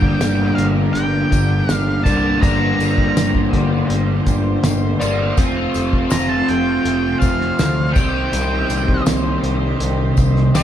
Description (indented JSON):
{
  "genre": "psychedelic rock",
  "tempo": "81 BPM",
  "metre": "4/4",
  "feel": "straight",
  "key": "G minor",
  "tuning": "A4 = 440 Hz",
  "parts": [
    { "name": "octave-fuzz lead guitar", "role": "melody", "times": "0.0-10.6 s", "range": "Eb5 to Bb5", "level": "-23 LUFS", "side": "equal", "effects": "distortion" },
    { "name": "warm studio string section", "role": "sustained chords", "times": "0.0-10.6 s", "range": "G3 to C5", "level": "-26 LUFS", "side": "right 2 dB", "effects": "none" },
    { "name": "overdriven electric guitar", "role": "riff", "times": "0.0-10.6 s", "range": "G2 to G4", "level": "-18 LUFS", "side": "equal", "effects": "rotary speaker" },
    { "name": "overdriven picked electric bass", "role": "bass", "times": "0.0-10.6 s", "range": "F1 to D2", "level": "-21 LUFS", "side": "equal", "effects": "none" },
    { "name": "cloth-damped thuddy drum kit", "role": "drums", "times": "0.0-10.6 s", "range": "hi-hat, kick drum, snare drum", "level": "-20 LUFS", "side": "equal", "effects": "none" },
    { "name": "tambourine", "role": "percussion", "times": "0.2-10.6 s", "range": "none", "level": "-35 LUFS", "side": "left 6 dB", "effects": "none" }
  ],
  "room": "moderate large studio reverb, RT60 0.8 s",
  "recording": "band playing live in one room",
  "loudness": "-15 LUFS",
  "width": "side -10 dB against mid",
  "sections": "0.0-10.6 A section",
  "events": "none",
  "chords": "0.0 Gm; 5.4 F; 8.0 Cm"
}